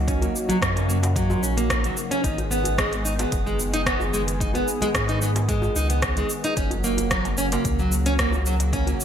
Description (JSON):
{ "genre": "organic downtempo", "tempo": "111 BPM", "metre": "4/4", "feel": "straight", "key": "G# minor", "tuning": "A4 = 441 Hz", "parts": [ { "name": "warm analog pad", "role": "sustained chords", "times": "0.0-9.0 s", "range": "C#3 to G#4", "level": "-30 LUFS", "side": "equal", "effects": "chorus, sidechain pumping" }, { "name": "warm sub bass", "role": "bass", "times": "0.0-8.9 s", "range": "F#1 to G#2", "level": "-25 LUFS", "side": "equal", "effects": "sidechain pumping" }, { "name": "bronze singing bowl", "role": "texture", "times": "0.0-9.0 s", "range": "D#4 to D#5", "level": "-42 LUFS", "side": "left 1 dB", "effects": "none" }, { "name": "nylon-string guitar", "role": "arpeggios", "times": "0.1-9.0 s", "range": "F#3 to D#4", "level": "-26 LUFS", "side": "right 1 dB", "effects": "low-pass filter, ping-pong delay" }, { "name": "electronic kick drum", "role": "drums", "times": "0.1-8.8 s", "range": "none", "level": "-29 LUFS", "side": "equal", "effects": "none" }, { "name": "organic electronic drum kit", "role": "drums", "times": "0.1-9.0 s", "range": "hi-hat, rim click, shaker", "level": "-28 LUFS", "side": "equal", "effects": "overdrive, gated reverb" }, { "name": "djembe", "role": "percussion", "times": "0.2-9.0 s", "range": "none", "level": "-36 LUFS", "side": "left 1 dB", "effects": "none" } ], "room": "light reverb, digital ambience", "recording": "bright 1980s-style digital production", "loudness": "-20 LUFS", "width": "side -9 dB against mid", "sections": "0.0-9.0 A section", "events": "none", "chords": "0.0 F#; 2.2 G#m; 6.6 F#" }